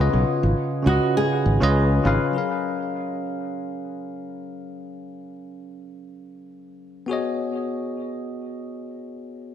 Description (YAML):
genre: sunset chillout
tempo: free time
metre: none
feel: none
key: F# major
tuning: A4 = 440 Hz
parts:
  - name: flamenco guitar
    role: melody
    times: 0.0-2.0 s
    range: E#4 to G#4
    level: -26 LUFS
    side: right 1 dB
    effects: tape echo
  - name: bell-like tine electric piano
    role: accompaniment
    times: 0.0-9.5 s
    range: C#3 to E#5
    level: -25 LUFS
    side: moving between left 4 dB and right 4 dB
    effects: auto-pan, tape echo
  - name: fretless electric bass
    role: bass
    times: 0.0-2.2 s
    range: G#1 to C#2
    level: -20 LUFS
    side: equal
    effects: none
room: moderate plate reverb, RT60 2.7 s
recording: dreamy mix soaked in reverb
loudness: -21 LUFS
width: side -9 dB against mid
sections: 0.0-2.3 A section; 2.3-9.5 B section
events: none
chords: 0.0 C#9; 2.3 F#maj7; 7.1 B69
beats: free time